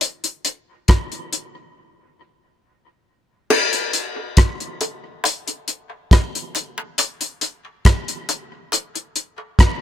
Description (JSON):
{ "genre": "reggae", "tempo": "69 BPM", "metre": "4/4", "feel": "straight", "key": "none", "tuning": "none", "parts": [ { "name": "damped 70s drum kit", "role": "drums", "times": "0.0-9.8 s", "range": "crash cymbal, hi-hat, kick drum, rim click", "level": "-16 LUFS", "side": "equal", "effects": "none" }, { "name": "bongos", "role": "percussion", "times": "3.5-8.9 s", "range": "none", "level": "-24 LUFS", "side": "equal", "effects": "high-pass filter on perc, dub echo" } ], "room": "little or no reverb", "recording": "none", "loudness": "-19 LUFS", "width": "side -12 dB against mid", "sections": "0.0-3.5 A section; 3.5-9.8 B section", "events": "break 1.8-3.5", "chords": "none", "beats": "| 0.02 0.89 1.76 2.63 | 3.50 4.37 5.24 6.11 | 6.98 7.85 8.72 9.59" }